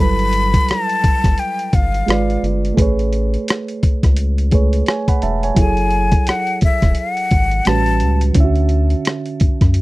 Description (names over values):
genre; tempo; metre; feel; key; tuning
R&B, neo-soul; 86 BPM; 4/4; swing 60% on 16ths; unclear; A4 = 442 Hz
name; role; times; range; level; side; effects
breathy jazz flute; melody; 0.0-8.2 s; E5 to B5; -20 LUFS; left 3 dB; none
reed electric piano; accompaniment; 0.0-9.8 s; A2 to B5; -21 LUFS; right 4 dB; none
rubbery square bass; bass; 0.0-9.8 s; E1 to F#2; -17 LUFS; equal; none
dusty soul sampler-style drum kit; drums; 0.2-9.8 s; hi-hat, kick drum, rim click; -15 LUFS; equal; none
room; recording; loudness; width
little or no reverb; dry, close 1970s-style studio recording; -14 LUFS; side -19 dB against mid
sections
0.0-9.8 A section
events
none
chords
0.0 Gmaj9; 2.1 G#dim7; 2.8 Amaj9; 5.6 F#m9; 7.7 A13; 8.4 Dmaj9